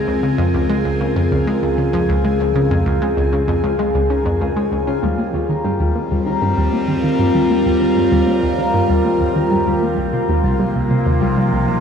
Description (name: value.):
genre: ambient, sequencer-driven space music.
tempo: 97 BPM.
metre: 4/4.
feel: straight.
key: unclear.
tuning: A4 = 441 Hz.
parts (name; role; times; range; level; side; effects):
evolving wavetable pad; sustained chords; 0.0-11.8 s; Eb2 to Bb4; -19 LUFS; equal; phaser, built-in reverb.
concert harp; arpeggios; 0.0-11.8 s; G3 to Db5; -22 LUFS; moving between left 6 dB and equal; auto-pan, ping-pong delay.
analog pluck; riff; 0.0-11.8 s; C2 to Bb3; -19 LUFS; right 1 dB; chorus, ping-pong delay.
fat analog bass; bass; 0.0-5.0 s; Db2; -25 LUFS; right 1 dB; none.
bubbling stepped-filter texture; texture; 0.0-11.8 s; F4 to Ab5; -27 LUFS; right 2 dB; chorus, built-in reverb.
room: wet cathedral reverb, RT60 6.3 s.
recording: dreamy mix soaked in reverb.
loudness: -15 LUFS.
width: side -7 dB against mid.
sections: 0.0-5.0 A section; 5.0-11.8 B section.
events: filter sweep on synth arpeggio sound 5.0-11.8.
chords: 0.0 Dbadd9; 5.0 Eb; 10.0 Cm.